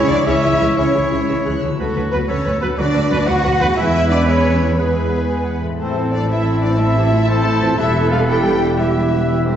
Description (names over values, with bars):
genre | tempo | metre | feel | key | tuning
cinematic, heroic adventure film score | 120 BPM (dotted quarters) | 6/8 | straight | unclear | A4 = 440 Hz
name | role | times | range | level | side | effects
clear oboe | second line | 0.0-9.6 s | C#4 to C5 | -28 LUFS | right 1 dB | none
mellow clarinet | second line | 0.0-9.6 s | D4 to F#5 | -25 LUFS | equal | none
rich symphonic violin section | second line | 0.0-9.6 s | G3 to F#5 | -25 LUFS | left 1 dB | none
dark French horn section | sustained chords | 0.0-9.6 s | G3 to G#4 | -23 LUFS | equal | none
concert harp | arpeggios | 0.0-9.6 s | E2 to B4 | -28 LUFS | left 5 dB | none
warm trumpet | stabs | 0.0-9.6 s | C4 to C#5 | -24 LUFS | right 1 dB | none
warm studio cello section | bass | 0.0-9.5 s | A3 to A4 | -23 LUFS | right 2 dB | none
rich symphonic violin section | melody | 0.1-9.6 s | C5 to F#6 | -28 LUFS | left 4 dB | none
rich symphonic viola section | accompaniment | 0.1-9.6 s | E3 to B4 | -24 LUFS | right 1 dB | none
rich symphonic double bass section | bass | 0.1-9.6 s | E1 to E2 | -20 LUFS | right 1 dB | none
silver concert flute | second line | 5.3-9.6 s | E5 to B5 | -28 LUFS | left 2 dB | none
room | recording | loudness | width
wet scoring stage reverb, RT60 1.7 s | heard from further back in the room, nothing above 8.0 kHz | -14 LUFS | side -9 dB against mid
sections
0.0-5.8 A section; 5.8-9.6 A section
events
none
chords
0.0 C#m; 1.8 Bm7/D; 3.8 E; 5.8 Am; 7.8 Em